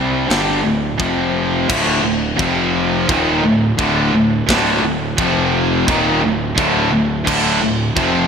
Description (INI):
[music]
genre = heavy metal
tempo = 86 BPM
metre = 4/4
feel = straight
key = D minor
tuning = A4 = 440 Hz
[part]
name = distorted electric guitar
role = riff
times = 0.0-8.3 s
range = D2 to C4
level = -18 LUFS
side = left 6 dB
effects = distortion
[part]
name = heavy high-gain guitar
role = riff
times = 0.0-8.3 s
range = D2 to C4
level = -20 LUFS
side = right 10 dB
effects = distortion
[part]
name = fuzz picked electric bass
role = bass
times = 0.0-8.3 s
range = D1 to C2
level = -24 LUFS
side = equal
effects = overdrive
[part]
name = tight metal drum kit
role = drums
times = 0.3-8.1 s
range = china cymbal, crash cymbal, kick drum, snare drum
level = -22 LUFS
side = right 1 dB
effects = gated reverb
[part]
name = cranked stack guitar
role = riff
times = 1.7-8.3 s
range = D2 to F3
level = -21 LUFS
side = right 1 dB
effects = overdrive
[sound]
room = moderate lush hall reverb, RT60 2.8 s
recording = bright 1980s-style digital production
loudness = -14 LUFS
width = side -6 dB against mid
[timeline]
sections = 0.0-1.7 A section; 1.7-8.3 B section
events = half time 1.7-8.3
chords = 0.0 D5; 1.0 F5; 1.7 D5; 2.4 F5; 3.1 D5; 5.2 F5; 5.9 D5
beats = 0.28 0.99 | 1.69 2.39 3.09 3.78 | 4.48 5.17 5.87 6.56 | 7.26 7.95